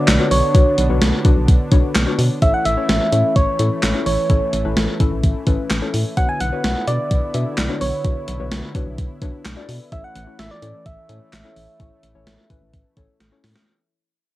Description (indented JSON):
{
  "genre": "synth-pop",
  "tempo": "128 BPM",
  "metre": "4/4",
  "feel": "straight",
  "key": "unclear",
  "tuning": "A4 = 440 Hz",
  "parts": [
    { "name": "soft struck synth lead", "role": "melody", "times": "0.0-13.2 s", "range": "C#5 to G#5", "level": "-22 LUFS", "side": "right 1 dB", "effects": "chorus, tape echo, plate reverb" },
    { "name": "soft round pluck", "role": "accompaniment", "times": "0.0-13.6 s", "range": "C#4 to E5", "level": "-26 LUFS", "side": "left 6 dB", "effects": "chorus, cassette tape, plate reverb" },
    { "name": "brassy analog pad", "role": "sustained chords", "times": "0.0-13.6 s", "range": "D3 to E4", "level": "-27 LUFS", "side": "right 1 dB", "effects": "chorus, cassette tape" },
    { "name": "solid FM bass", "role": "bass", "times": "0.1-13.5 s", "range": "A1 to B2", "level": "-21 LUFS", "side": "equal", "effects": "none" },
    { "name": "gated 80s digital drum machine", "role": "drums", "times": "0.1-13.7 s", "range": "handclaps, hi-hat, kick drum, snare drum", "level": "-18 LUFS", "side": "equal", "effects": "gated reverb, gated reverb snare, cassette tape" }
  ],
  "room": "light reverb",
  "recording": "home recording on cassette",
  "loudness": "-16 LUFS",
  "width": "side -16 dB against mid",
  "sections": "0.0-13.7 A section",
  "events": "fade-out 0.0-13.7; drum fill 13.2-13.7",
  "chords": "0.0 Bmadd9; 2.4 A; 6.2 Bmadd9; 9.9 A",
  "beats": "0.08 | 0.55 1.02 1.48 1.95 | 2.42 2.89 3.36 3.83 | 4.30 4.77 5.23 5.70 | 6.17 6.64 7.11 7.58 | 8.05 8.52 8.98 9.45 | 9.92 10.39 10.86 11.33 | 11.80 12.27 12.73 13.20"
}